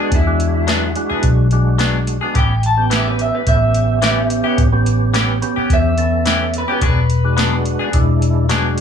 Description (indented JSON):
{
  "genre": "straight-eighth soul blues",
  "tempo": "107 BPM",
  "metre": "4/4",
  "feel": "straight",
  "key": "E mixolydian",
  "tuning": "A4 = 439 Hz",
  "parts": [
    { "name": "electric guitar at the edge of break-up", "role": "melody", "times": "0.0-7.9 s", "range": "E4 to A5", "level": "-21 LUFS", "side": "right 1 dB", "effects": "spring reverb, plate reverb" },
    { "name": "percussive tonewheel organ", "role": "accompaniment", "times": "0.0-8.8 s", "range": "G#3 to A4", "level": "-21 LUFS", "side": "right 4 dB", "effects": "overdrive, chorus vibrato, slow rotary speaker" },
    { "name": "direct-recorded clean electric guitar", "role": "stabs", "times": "0.0-8.7 s", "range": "E3 to G#4", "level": "-21 LUFS", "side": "left 6 dB", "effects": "lush chorus" },
    { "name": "vintage muted fingered electric bass", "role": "bass", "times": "0.1-8.8 s", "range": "E1 to E2", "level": "-17 LUFS", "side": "left 1 dB", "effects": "none" },
    { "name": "soft vintage rhythm box", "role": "drums", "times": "0.1-8.8 s", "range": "hi-hat, kick drum, snare drum", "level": "-20 LUFS", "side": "equal", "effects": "none" }
  ],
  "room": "light reverb",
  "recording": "small room ambience",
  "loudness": "-13 LUFS",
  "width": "side -7 dB against mid",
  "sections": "0.0-8.8 A section",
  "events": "none",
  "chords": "0.0 E9; 2.4 A9; 6.8 E9"
}